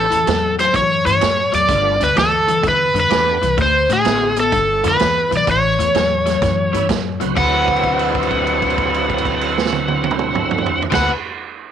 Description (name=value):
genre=electric blues shuffle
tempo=127 BPM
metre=4/4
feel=swing 67% on 8ths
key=D mixolydian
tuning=A4 = 440 Hz
part: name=overdriven slide guitar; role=melody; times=0.0-11.1 s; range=G#4 to F#5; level=-16 LUFS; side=equal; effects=none
part: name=bright tonewheel organ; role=accompaniment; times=0.0-11.1 s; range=D2 to G4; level=-24 LUFS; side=right 13 dB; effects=overdrive, chorus vibrato, slow rotary speaker
part: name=overdriven electric guitar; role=riff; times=0.0-11.1 s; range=G2 to B4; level=-22 LUFS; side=left 11 dB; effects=none
part: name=upright bass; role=bass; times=0.0-11.1 s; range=G1 to A2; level=-25 LUFS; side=equal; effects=none
part: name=vintage drum kit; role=drums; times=0.1-11.0 s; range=crash cymbal, hi-hat, kick drum, snare drum, toms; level=-23 LUFS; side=right 7 dB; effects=none
room=moderate spring reverb, RT60 2.0 s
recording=1960s-style stereo with parts hard left and right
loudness=-14 LUFS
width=side -9 dB against mid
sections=0.0-7.4 A section; 7.4-11.1 B section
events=held note 7.4-10.9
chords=0.0 A; 1.7 G9; 3.6 D9; 4.5 G9; 5.5 A9; 7.4 D13